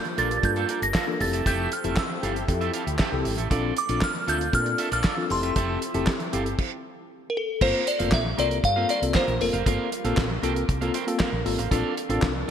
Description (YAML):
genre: early-eighties boogie funk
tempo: 117 BPM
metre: 4/4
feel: straight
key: G dorian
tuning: A4 = 442 Hz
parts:
  - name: delicate synth tine bell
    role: melody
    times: 0.0-10.9 s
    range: A4 to Bb6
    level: -27 LUFS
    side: left 1 dB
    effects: chorus, phaser
  - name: lush unison pad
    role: sustained chords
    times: 0.0-12.5 s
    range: F3 to A4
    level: -37 LUFS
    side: right 1 dB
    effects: chorus, phaser
  - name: electric guitar at the edge of break-up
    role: riff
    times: 0.1-12.5 s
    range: Bb3 to G5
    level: -32 LUFS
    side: right 7 dB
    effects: wide subtle chorus
  - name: damped 70s drum kit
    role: drums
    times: 0.1-12.3 s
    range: crash cymbal, handclaps, hi-hat, kick drum, snare drum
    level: -27 LUFS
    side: right 1 dB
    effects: gated reverb
  - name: mellow tine electric piano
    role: accompaniment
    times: 0.2-12.5 s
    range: Bb3 to A4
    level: -29 LUFS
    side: left 3 dB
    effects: medium stereo tremolo
  - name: woody fretless electric bass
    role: bass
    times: 0.2-12.5 s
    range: F1 to Bb2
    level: -29 LUFS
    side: equal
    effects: none
room: moderate lush hall reverb, RT60 2.3 s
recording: bright 1980s-style digital production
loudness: -22 LUFS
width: side -8 dB against mid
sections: 0.0-7.6 A section; 7.6-12.5 B section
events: stop 6.6-7.6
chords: 0.0 Gm9; 1.2 Fmaj9; 3.5 Bbmaj7; 5.3 Fmaj9; 7.6 Gm11; 11.7 Bbmaj7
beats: 0.43 0.94 | 1.46 1.97 2.48 3.00 | 3.51 4.02 4.54 5.05 | 5.56 6.07 6.59 7.10 | 7.61 8.12 8.64 9.15 | 9.66 10.18 10.69 11.20 | 11.71 12.23